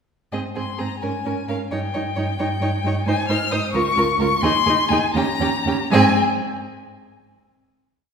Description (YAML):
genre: quick classical-period movement for string quartet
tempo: 76-89 BPM (dotted quarters)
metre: 6/8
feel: rubato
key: Ab major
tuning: A4 = 440 Hz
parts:
  - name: rich violin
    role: melody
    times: 0.3-6.2 s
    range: Eb5 to F6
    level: -22 LUFS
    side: left 5 dB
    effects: none
  - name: clear violin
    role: second line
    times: 0.3-6.2 s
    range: G4 to Db5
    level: -27 LUFS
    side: equal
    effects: none
  - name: rich viola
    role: accompaniment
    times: 0.3-6.2 s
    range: C4 to F4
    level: -24 LUFS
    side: right 4 dB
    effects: none
  - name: rich cello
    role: bass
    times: 0.3-6.2 s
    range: Db2 to Ab2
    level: -24 LUFS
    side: right 2 dB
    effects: none
room: wet scoring stage reverb, RT60 1.7 s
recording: recorded in a church or concert hall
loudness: -18 LUFS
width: side -6 dB against mid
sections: 0.3-5.9 A section; 5.9-7.4 final chord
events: none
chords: 0.3 Ab; 1.0 Bbm7/Ab; 1.7 Eb7/G; 3.1 Ab; 3.7 Bbm/Db; 4.4 Ab/Eb; 5.2 Eb7; 5.9 Ab